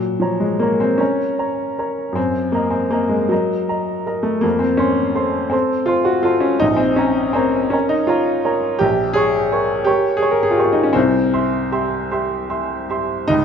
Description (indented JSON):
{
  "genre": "classical, romantic nocturne for solo piano",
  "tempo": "48-58 BPM (dotted quarters)",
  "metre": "6/8",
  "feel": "rubato",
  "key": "Bb minor",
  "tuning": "A4 = 440 Hz",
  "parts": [
    { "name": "warm upright piano", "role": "solo", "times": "0.0-13.4 s", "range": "Bb1 to Db6", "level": "-16 LUFS", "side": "equal", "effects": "none" }
  ],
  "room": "wet recital hall reverb, RT60 1.5 s",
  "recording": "minimal, uncompressed stereo recording",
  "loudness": "-16 LUFS",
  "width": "side -7 dB against mid",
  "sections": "0.0-13.4 A section",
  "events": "none",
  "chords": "0.0 Bbm; 2.2 Ebm/Gb; 4.4 F; 6.6 Bbm; 11.0 C",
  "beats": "1.00 | 2.17 3.31 | 4.45 5.53 | 6.62 7.74 | 8.82 9.87 | 10.96 12.11 | 13.29"
}